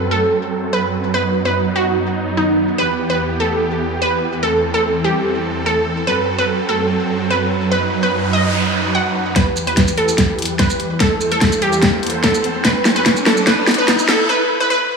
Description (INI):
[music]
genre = heavy wobble dubstep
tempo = 146 BPM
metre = 4/4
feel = half-time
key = E harmonic minor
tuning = A4 = 442 Hz
[part]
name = wide unison pluck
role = melody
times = 0.0-14.9 s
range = D#4 to F#5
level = -18 LUFS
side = right 1 dB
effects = digital delay
[part]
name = supersaw chords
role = sustained chords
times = 0.0-14.3 s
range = E2 to C5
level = -20 LUFS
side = right 2 dB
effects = vintage 12-bit sampler grit, sidechain pumping, low-pass filter
[part]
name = noise sweep and riser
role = sound effects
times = 7.9-14.3 s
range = none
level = -23 LUFS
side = equal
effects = none
[part]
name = dubstep drum kit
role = drums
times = 9.4-14.2 s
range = hi-hat, shaker, snare drum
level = -16 LUFS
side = equal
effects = overdrive, low-pass filter on hats, low-pass filter on toms, low-pass filter on snare, low-pass filter on perc
[part]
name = electronic kick drum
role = drums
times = 9.4-14.0 s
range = none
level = -20 LUFS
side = equal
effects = overdrive
[sound]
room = moderate lush hall reverb, RT60 2.0 s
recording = high-pass filter, studio ambience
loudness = -14 LUFS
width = side -5 dB against mid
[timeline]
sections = 0.0-9.4 A section; 9.4-15.0 B section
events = filter sweep on supersaw synth 0.0-9.4, 9.4-15.0; noise sweep 7.9-9.4; build-up 9.4-15.0; drum fill 9.4-14.3; riser 9.4-14.3; break 14.3-15.0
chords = 0.0 F#dim; 1.1 B/F#; 2.8 Em; 4.4 Am/E; 6.1 F#dim; 7.7 B/F#; 9.4 Em; 11.0 Am/E; 12.6 F#dim; 14.3 N.C.